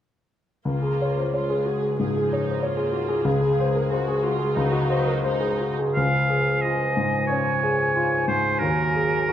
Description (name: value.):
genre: classical, romantic movement for piano and orchestra.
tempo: 91 BPM.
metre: 4/4.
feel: uneven beats, rubato.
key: unclear.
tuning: A4 = 441 Hz.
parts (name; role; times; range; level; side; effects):
clear grand piano; melody; 0.7-9.3 s; Db2 to Db5; -22 LUFS; left 1 dB; none.
clear symphonic viola section; accompaniment; 0.7-5.7 s; F3 to Ab4; -30 LUFS; right 2 dB; none.
bright oboe; second line; 5.9-9.3 s; Bb4 to F5; -23 LUFS; right 3 dB; none.
concert flute; second line; 6.0-9.3 s; Ab5; -30 LUFS; left 3 dB; none.
dark bassoon; accompaniment; 6.0-9.3 s; F3 to Gb3; -29 LUFS; right 3 dB; none.
room: moderate concert hall reverb, RT60 2.3 s.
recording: none.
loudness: -20 LUFS.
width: side -10 dB against mid.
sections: 0.7-6.0 A section; 6.0-9.3 B section.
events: none.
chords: 0.7 Ab7/Db; 6.0 Db; 8.6 Ab5/Eb.